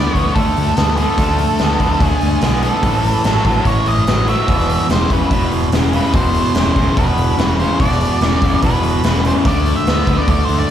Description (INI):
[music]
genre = blues rock power trio and southern rock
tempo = 145 BPM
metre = 4/4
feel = straight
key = unclear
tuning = A4 = 440 Hz
[part]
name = octave-fuzz lead guitar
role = melody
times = 0.0-10.7 s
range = A4 to E5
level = -20 LUFS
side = equal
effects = distortion, analog delay
[part]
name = distorted electric guitar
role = riff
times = 0.0-10.7 s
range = E2 to B3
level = -18 LUFS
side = equal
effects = overdrive
[part]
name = growling picked electric bass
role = bass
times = 0.0-10.6 s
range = E1 to D2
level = -19 LUFS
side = equal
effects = overdrive
[part]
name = raw garage drum kit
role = drums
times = 0.1-10.6 s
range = hi-hat, kick drum, snare drum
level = -18 LUFS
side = equal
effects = none
[sound]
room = light reverb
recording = live gig heard through the venue's PA, club reverb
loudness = -13 LUFS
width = side -10 dB against mid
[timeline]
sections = 0.0-10.7 A section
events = none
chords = 0.0 D5; 2.8 A5; 4.5 E5; 9.5 D5